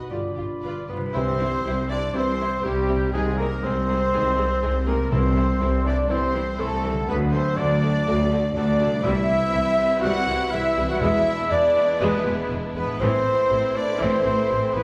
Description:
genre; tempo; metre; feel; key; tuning
cinematic, heroic adventure film score; 121 BPM; 4/4; straight; C lydian; A4 = 439 Hz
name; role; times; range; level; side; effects
warm symphonic violin section; melody; 0.0-14.8 s; G4 to F#5; -37 LUFS; equal; none
dark clarinet; second line; 0.0-0.9 s; F4 to F#4; -37 LUFS; equal; none
flute section; second line; 0.0-14.8 s; G4 to B5; -34 LUFS; equal; none
rich symphonic violin section; second line; 0.0-14.8 s; C4 to B4; -38 LUFS; equal; none
rich studio viola section; accompaniment; 0.0-14.8 s; C3 to F4; -34 LUFS; equal; none
concert harp; arpeggios; 0.0-14.8 s; G2 to D#5; -37 LUFS; equal; none
mellow cor anglais; second line; 0.1-14.8 s; G3 to D5; -34 LUFS; equal; none
dark trombone section; sustained chords; 0.1-14.8 s; D3 to C4; -36 LUFS; equal; none
mellow French horn section; sustained chords; 0.1-14.8 s; B3 to E5; -28 LUFS; equal; none
mellow trumpet; stabs; 0.1-14.8 s; G4 to F#5; -33 LUFS; equal; none
clear symphonic double bass section; bass; 0.1-14.8 s; E1 to D2; -30 LUFS; equal; none
rich symphonic cello section; bass; 0.1-14.8 s; C2 to A2; -30 LUFS; equal; none
timpani; percussion; 5.1-5.8, 9.0-9.7 s; C3; -30 LUFS; equal; none
room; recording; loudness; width
wet recital hall reverb, RT60 1.4 s; recorded in a church or concert hall; -22 LUFS; mono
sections
0.0-1.1 A section; 1.1-14.8 B section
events
none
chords
0.1 G7; 1.1 C; 3.1 Ab/C; 5.1 Am/C; 7.1 D; 9.0 C; 11.0 E7; 13.0 Am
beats
0.10 0.63 | 1.14 1.65 2.15 2.64 | 3.14 3.63 4.13 4.62 | 5.12 5.61 6.09 6.59 | 7.08 7.57 8.06 8.55 | 9.04 9.53 10.03 10.52 | 11.02 11.51 12.01 12.51 | 13.01 13.51 14.01 14.51

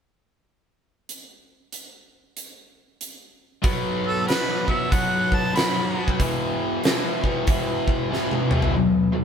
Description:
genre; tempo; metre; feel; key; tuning
blues rock power trio and southern rock; 94 BPM; 4/4; swing 62% on 8ths; unclear; A4 = 439 Hz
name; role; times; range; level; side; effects
huge arena drum kit; drums; 1.1-8.7 s; hi-hat, kick drum, snare drum, toms; -24 LUFS; equal; none
cranked stack guitar; riff; 3.6-9.2 s; E2 to B3; -23 LUFS; left 1 dB; overdrive
clear harmonica; melody; 4.1-6.2 s; A4 to B5; -25 LUFS; right 1 dB; overdrive
room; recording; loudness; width
moderate stone room reverb, RT60 1.1 s; band playing live in one room; -20 LUFS; side -7 dB against mid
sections
1.1-3.6 A section; 3.6-8.8 B section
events
drum fill 8.1-8.8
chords
1.1 N.C.; 3.6 B5; 6.2 E5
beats
| 1.08 1.72 2.36 3.00 | 3.64 4.28 4.92 5.56 | 6.20 6.84 7.48 8.12 | 8.75

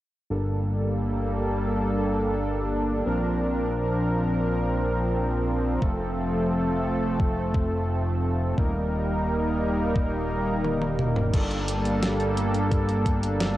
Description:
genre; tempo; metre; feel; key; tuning
synthwave; 87 BPM; 4/4; straight; G minor; A4 = 440 Hz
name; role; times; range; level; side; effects
soft supersaw; sustained chords; 0.3-13.6 s; F3 to Bb4; -25 LUFS; equal; sidechain pumping, cassette tape
fat analog bass; bass; 0.3-13.6 s; Eb1 to Bb1; -28 LUFS; equal; tube saturation
electronic kick drum; drums; 5.8-13.2 s; none; -25 LUFS; equal; cassette tape
clean 12-bit digital drum machine; drums; 10.6-13.5 s; crash cymbal, hi-hat, snare drum, toms; -29 LUFS; equal; low-pass filter on toms, cassette tape, low-pass filter on hats, low-pass filter on cymbals, low-pass filter on snare, low-pass filter on room
room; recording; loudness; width
light reverb; home recording on cassette; -23 LUFS; side -15 dB against mid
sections
0.3-11.3 A section; 11.3-13.6 B section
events
filter sweep on analog synth bass 0.3-11.3; drum fill 10.6-11.3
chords
0.3 Gmadd9; 3.1 Bbadd9; 5.8 F; 8.6 Eb; 11.3 Gmadd9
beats
| 0.30 0.99 1.68 2.37 | 3.06 3.75 4.44 5.13 | 5.82 6.51 7.20 7.89 | 8.58 9.27 9.96 10.65 | 11.34 12.03 12.72 13.41

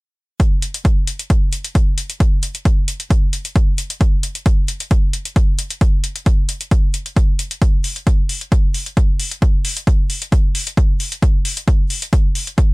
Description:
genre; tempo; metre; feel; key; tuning
techno; 133 BPM; 4/4; straight; none; none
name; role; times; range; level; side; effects
electronic hi-hat; drums; 0.4-12.7 s; none; -24 LUFS; left 2 dB; sidechain pumping on hats
electronic kick drum; drums; 0.4-12.7 s; none; -14 LUFS; equal; none
room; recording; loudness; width
little or no reverb; none; -15 LUFS; side -26 dB against mid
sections
0.4-12.7 A section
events
none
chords
none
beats
| 0.40 0.85 1.30 1.75 | 2.20 2.65 3.10 3.56 | 4.01 4.46 4.91 5.36 | 5.81 6.26 6.71 7.17 | 7.62 8.07 8.52 8.97 | 9.42 9.87 10.32 10.78 | 11.23 11.68 12.13 12.58

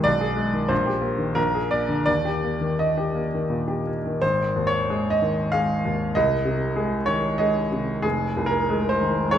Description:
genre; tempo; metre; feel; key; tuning
classical, romantic character piece for solo piano; 82-98 BPM; 3/4; rubato; Eb major, Ab major from 4.2 s; A4 = 445 Hz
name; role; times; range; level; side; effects
bright baby grand piano; solo; 0.0-9.4 s; F1 to F5; -21 LUFS; equal; none
room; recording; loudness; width
wet recital hall reverb, RT60 1.3 s; dark, warm production; -21 LUFS; side -10 dB against mid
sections
0.0-4.2 A section; 4.2-9.4 B section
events
none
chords
0.1 Abm/Cb; 0.7 Eb/Bb; 1.4 Bb7; 2.1 Eb; 4.2 Ab5; 6.1 Ab/C; 8.0 Fm7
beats
| 0.06 0.71 1.37 | 2.08 2.80 3.52 | 4.23 4.89 5.52 | 6.15 6.78 7.40 | 8.04 8.69 9.31

